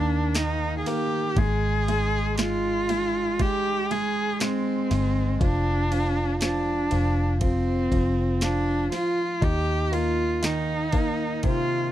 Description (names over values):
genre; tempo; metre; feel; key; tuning
pop ballad; 60 BPM; 4/4; straight; unclear; A4 = 441 Hz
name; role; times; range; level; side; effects
warm cello; melody; 0.0-11.9 s; C4 to Ab4; -26 LUFS; equal; slapback echo
felt-muted upright piano; accompaniment; 0.0-11.9 s; C3 to Eb4; -29 LUFS; right 2 dB; none
vintage muted fingered electric bass; bass; 0.0-11.9 s; F1 to Eb2; -27 LUFS; equal; none
smooth R&B drum kit; drums; 0.3-11.7 s; kick drum, ride cymbal, snare drum; -28 LUFS; equal; none
room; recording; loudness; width
little or no reverb; dry, close 1970s-style studio recording; -22 LUFS; side -12 dB against mid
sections
0.0-11.9 A section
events
none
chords
0.0 Eb5; 1.4 Ab6; 5.4 F5; 9.4 Cm7/Eb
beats
0.35 | 1.36 2.38 3.40 4.41 | 5.41 6.42 7.42 8.42 | 9.42 10.43 11.44